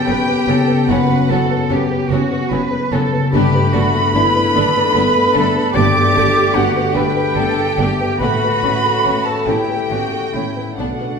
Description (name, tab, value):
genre	cinematic, emotional film score for orchestra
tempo	49 BPM (dotted quarters)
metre	6/8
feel	rubato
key	unclear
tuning	A4 = 440 Hz
part	silver concert flute	second line	0.0-11.2 s	F#5 to D6	-20 LUFS	right 1 dB	none
part	warm clarinet	second line	0.0-11.2 s	F#4 to D5	-24 LUFS	left 1 dB	none
part	warm studio violin section	second line	0.0-11.2 s	F#5 to D6	-24 LUFS	left 1 dB	none
part	felt-muted upright piano	accompaniment	0.0-11.2 s	B1 to B4	-23 LUFS	left 2 dB	none
part	dark French horn section	sustained chords	0.0-11.2 s	A3 to D4	-24 LUFS	left 2 dB	none
part	concert harp	arpeggios	0.0-11.2 s	F#2 to C#5	-22 LUFS	left 4 dB	none
part	warm studio cello section	bass	0.0-11.2 s	D4 to B4	-22 LUFS	right 3 dB	none
part	warm studio violin section	melody	0.1-10.9 s	C#4 to D4	-27 LUFS	left 5 dB	none
part	warm studio viola section	accompaniment	0.1-10.9 s	C#3 to B3	-26 LUFS	right 2 dB	none
part	rich studio double bass section	bass	0.1-10.9 s	F#1 to B1	-24 LUFS	right 4 dB	none
room	wet recital hall reverb, RT60 1.4 s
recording	recorded in a church or concert hall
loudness	-13 LUFS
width	side -5 dB against mid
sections	0.0-11.2 A section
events	none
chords	0.0 F#sus4; 3.3 Gadd9; 8.2 Aadd9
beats	| 0.89 2.11 | 3.32 4.54 | 5.75 6.95 | 8.20 9.47 | 10.78